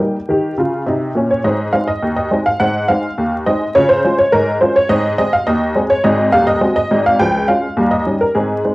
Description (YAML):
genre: ragtime piano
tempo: 104 BPM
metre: 2/4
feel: straight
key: Ab major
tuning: A4 = 440 Hz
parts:
  - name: honky-tonk upright piano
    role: solo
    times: 0.0-8.7 s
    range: Eb1 to G5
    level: -13 LUFS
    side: equal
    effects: cassette tape
room: wet small room reverb, RT60 0.5 s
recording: home recording on cassette, vinyl crackle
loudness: -12 LUFS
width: side -21 dB against mid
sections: 0.0-8.7 A section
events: none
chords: 0.0 Eb; 1.4 Ab; 3.8 Db; 4.9 Ab; 6.0 Ab7; 7.2 Db; 7.8 Eb7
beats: | 0.29 0.87 | 1.45 2.02 | 2.60 3.17 | 3.75 4.32 | 4.90 5.47 | 6.04 6.62 | 7.19 7.77 | 8.35